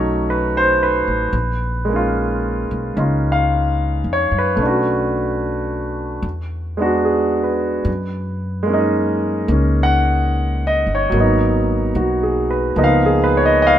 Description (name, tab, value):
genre	jazz ballad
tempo	73 BPM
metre	4/4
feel	swing 68% on 8ths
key	F# major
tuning	A4 = 441 Hz
part	clear concert grand piano	accompaniment	0.0-13.8 s	E#3 to F#5	-17 LUFS	equal	none
part	upright bass	bass	0.0-13.8 s	G1 to F#2	-21 LUFS	equal	none
room	light reverb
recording	minimal, uncompressed stereo recording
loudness	-16 LUFS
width	side -10 dB against mid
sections	0.0-13.8 A section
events	none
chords	0.0 B9; 1.3 A#m7; 4.6 Bm7; 6.2 E9; 7.9 F#69; 11.1 G#m7; 12.8 C#13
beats	0.51 | 1.33 2.15 2.97 3.78 | 4.60 5.42 6.24 7.05 | 7.87 8.69 9.51 10.32 | 11.14 11.96 12.78 13.60